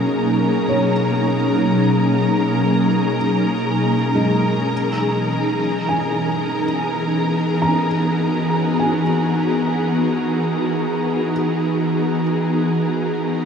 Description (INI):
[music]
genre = ambient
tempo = 52 BPM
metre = 4/4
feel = straight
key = unclear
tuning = A4 = 439 Hz
[part]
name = ethereal airy pad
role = sustained chords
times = 0.0-13.5 s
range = B2 to G#4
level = -17 LUFS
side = equal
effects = ensemble chorus, built-in reverb
[part]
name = felt-muted upright piano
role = arpeggios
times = 0.0-13.5 s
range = G#3 to A#5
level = -27 LUFS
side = equal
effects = tape echo
[part]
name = warm symphonic violin section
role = texture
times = 0.0-13.5 s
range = A#4 to A#5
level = -26 LUFS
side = right 1 dB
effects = none
[sound]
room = moderate plate reverb, RT60 2.5 s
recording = dreamy mix soaked in reverb, nothing above 10.5 kHz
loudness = -16 LUFS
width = side -6 dB against mid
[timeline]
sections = 0.0-13.5 A section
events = none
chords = 0.0 Bmaj13; 4.7 Emaj9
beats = | 0.09 1.25 2.41 3.57 | 4.72 5.87 7.03 8.20 | 9.37 10.54 11.73 12.93